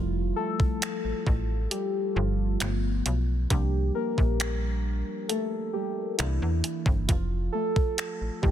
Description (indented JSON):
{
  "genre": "contemporary R&B",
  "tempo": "67 BPM",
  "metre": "4/4",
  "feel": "straight",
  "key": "F major",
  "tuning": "A4 = 440 Hz",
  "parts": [
    { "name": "muted felt-like synth keys", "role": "accompaniment", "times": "0.0-8.5 s", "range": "E3 to Bb4", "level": "-30 LUFS", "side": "equal", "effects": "chorus, phaser" },
    { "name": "slap-like FM bass", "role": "bass", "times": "0.0-8.5 s", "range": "F1 to E2", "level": "-27 LUFS", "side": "equal", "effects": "none" },
    { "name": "gated 80s digital drum machine", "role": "drums", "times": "0.6-8.5 s", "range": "finger snaps, hi-hat, kick drum", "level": "-28 LUFS", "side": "equal", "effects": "soft clipping on snare" }
  ],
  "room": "little or no reverb",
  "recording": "dense, heavily limited modern master",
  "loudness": "-25 LUFS",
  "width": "side -10 dB against mid",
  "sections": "0.0-8.5 A section",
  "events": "synth keys solo 0.0-8.5",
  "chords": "0.0 Fmaj7; 2.6 G7; 3.5 C7sus4; 6.2 C7; 7.1 F",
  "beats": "0.82 1.71 2.61 | 3.50 4.40 5.30 6.19 | 7.09 7.98"
}